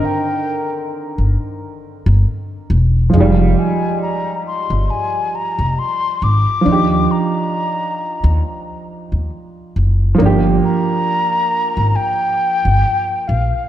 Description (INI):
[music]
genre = lo-fi hip hop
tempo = 68 BPM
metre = 4/4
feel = swing 56% on 16ths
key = F dorian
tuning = A4 = 440 Hz
[part]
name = breathy mellow concert flute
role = melody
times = 0.0-13.7 s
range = F5 to D6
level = -19 LUFS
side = left 2 dB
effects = low-pass filter, tape echo
[part]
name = warm upright piano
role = accompaniment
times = 0.0-13.7 s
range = D3 to Bb4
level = -19 LUFS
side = right 3 dB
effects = low-pass filter
[part]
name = upright bass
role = bass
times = 1.2-13.5 s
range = E1 to Eb2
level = -15 LUFS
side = equal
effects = none
[sound]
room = moderate scoring stage reverb, RT60 2.0 s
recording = dark, warm production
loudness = -14 LUFS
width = side -11 dB against mid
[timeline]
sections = 0.0-13.7 A section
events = none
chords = 0.0 Cm9; 3.1 Fm9; 6.7 Ebmaj9; 10.2 Gm7